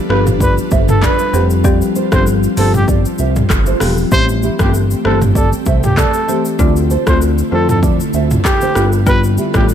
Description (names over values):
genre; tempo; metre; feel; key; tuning
afrobeats; 97 BPM; 4/4; swing 55% on 16ths; unclear; A4 = 440 Hz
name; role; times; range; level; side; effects
ethereal airy pad; sustained chords; 0.0-9.7 s; D3 to B4; -22 LUFS; equal; ensemble chorus, built-in reverb
mellow trumpet; melody; 0.1-9.7 s; G4 to C5; -20 LUFS; right 1 dB; tape echo
marimba with medium mallets; accompaniment; 0.1-9.7 s; D3 to G4; -19 LUFS; left 5 dB; none
nylon-string guitar; riff; 0.1-9.7 s; E4 to E5; -23 LUFS; right 8 dB; tape echo
fat analog bass; bass; 0.1-9.7 s; E1 to F2; -15 LUFS; equal; none
deep house drum kit; drums; 0.1-9.7 s; handclaps, hi-hat, kick drum, rim click, shaker, toms; -16 LUFS; equal; overdrive
room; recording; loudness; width
digital ambience; none; -11 LUFS; side -9 dB against mid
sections
0.0-9.7 A section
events
none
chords
0.0 G7; 1.3 Fsus2; 4.1 Am7; 6.6 Dm7; 8.8 G7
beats
0.41 1.02 | 1.64 2.26 2.88 3.50 | 4.12 4.74 5.36 5.97 | 6.59 7.21 7.83 8.45 | 9.07 9.69